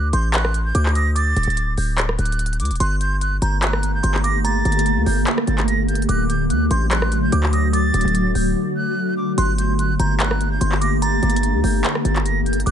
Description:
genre	hip hop, trap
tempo	146 BPM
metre	4/4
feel	half-time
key	G harmonic minor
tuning	A4 = 443 Hz
part	jazz flute	melody	0.0-12.7 s	D6 to Bb6	-26 LUFS	right 3 dB	analog delay
part	glassy synth bell	second line	0.0-12.7 s	Bb5 to Eb6	-28 LUFS	right 2 dB	chorus, analog delay
part	hard-hitting 808-style bass	bass	0.0-12.7 s	D1 to D2	-20 LUFS	equal	none
part	trap drum kit	drums	0.1-12.7 s	handclaps, hi-hat, rim click	-24 LUFS	equal	none
part	ethereal airy pad	sustained chords	3.5-12.7 s	D3 to G4	-22 LUFS	equal	ensemble chorus, built-in reverb
room	little or no reverb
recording	echo-heavy mix, nothing above 10.9 kHz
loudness	-17 LUFS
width	side -9 dB against mid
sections	0.0-9.4 A section; 9.4-12.7 A section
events	break 8.6-9.4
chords	0.0 D; 2.8 Gmadd9; 6.1 D; 9.4 Gmadd9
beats	0.34 0.75 | 1.16 1.57 1.98 2.39 | 2.80 3.21 3.62 4.04 | 4.45 4.86 5.27 5.68 | 6.09 6.50 6.91 7.32 | 7.74 8.15 8.56 8.97 | 9.38 9.79 10.20 10.61 | 11.02 11.43 11.84 12.26 | 12.67

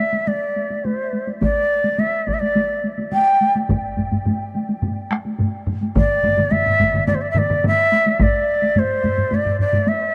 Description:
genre	japanese traditional, taiko drum ensemble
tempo	106 BPM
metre	4/4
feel	straight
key	unclear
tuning	A4 = 438 Hz
part	breathy shakuhachi	melody	0.0-10.1 s	C5 to G5	-21 LUFS	equal	none
part	taiko ensemble	percussion	0.1-10.0 s	none	-26 LUFS	equal	none
part	taiko ensemble	percussion	1.4-8.3 s	none	-25 LUFS	equal	none
part	taiko ensemble	percussion	3.7-9.9 s	none	-25 LUFS	equal	none
part	taiko ensemble	percussion	6.0-7.8 s	none	-27 LUFS	equal	none
room	moderate huge ambient reverb, RT60 8.6 s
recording	dark, warm production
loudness	-19 LUFS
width	mono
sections	0.0-8.2 A section; 8.2-10.1 B section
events	speeding up 0.0-10.1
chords	none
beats	0.28 0.85 | 1.43 2.00 2.57 3.13 | 3.70 4.27 4.83 5.40 | 5.96 6.52 7.08 7.64 | 8.20 8.76 9.32 9.87

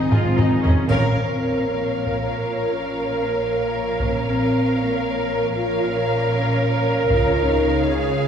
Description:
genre	cinematic, epic orchestral film score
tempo	77 BPM (dotted quarters)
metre	6/8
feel	straight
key	Bb minor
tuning	A4 = 440 Hz
part	dark French horn section	sustained chords	0.0-8.3 s	Bb3 to F4	-24 LUFS	left 1 dB	none
part	rich symphonic string section	sustained chords	0.0-0.9 s	Ab3 to Eb5	-32 LUFS	equal	none
part	rich symphonic cello section	bass	0.0-8.3 s	Ab2 to Db3	-28 LUFS	right 2 dB	none
part	rich symphonic double bass section	bass	0.0-8.3 s	Ab1 to Db2	-27 LUFS	right 2 dB	none
part	rich symphonic violin section	melody	0.1-8.3 s	Eb5 to F5	-32 LUFS	left 1 dB	none
part	warm symphonic violin section	second line	0.1-8.3 s	Ab4 to Db5	-28 LUFS	left 3 dB	none
part	clear symphonic viola section	accompaniment	0.1-8.3 s	Db4 to Bb4	-23 LUFS	right 1 dB	none
part	taiko ensemble	drums	0.1-8.1 s	none	-22 LUFS	equal	none
part	bright trombone section	sustained chords	0.6-0.7 s	Eb3 to Eb4	-36 LUFS	right 1 dB	none
part	triangle	percussion	0.9-1.9 s	none	-54 LUFS	equal	none
room	wet concert hall reverb, RT60 1.9 s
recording	heard from further back in the room, small room ambience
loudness	-18 LUFS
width	side -8 dB against mid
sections	0.9-8.3 A section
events	drum fill 0.1-0.9; band accent 0.9-1.4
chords	0.0 Ab; 0.9 Bbm; 7.1 Db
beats	0.11 | 0.89 1.67 | 2.44 3.22 | 4.00 4.77 | 5.55 6.33 | 7.10 7.88

